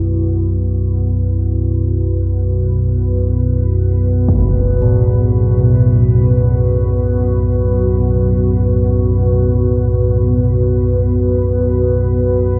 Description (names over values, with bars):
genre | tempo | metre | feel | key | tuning
dark ambient drone | free time | none | none | unclear | A4 = 441 Hz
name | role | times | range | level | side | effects
dark analog pad | sustained chords | 0.0-12.6 s | B3 to B4 | -22 LUFS | equal | chorus, phaser
quartz singing bowl | arpeggios | 0.0-11.9 s | A2 to E4 | -22 LUFS | equal | delay
deep rumbling drone | drone | 0.0-12.6 s | B1 to F#2 | -16 LUFS | equal | built-in reverb
impact | percussion | 4.3-4.5 s | none | -23 LUFS | equal | low-pass filter on sfx
room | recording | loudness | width
wet huge ambient reverb, RT60 7.4 s | none | -15 LUFS | mono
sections
0.0-12.6 A section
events
fade-in on analog synth pad 0.0-12.6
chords
0.0 B5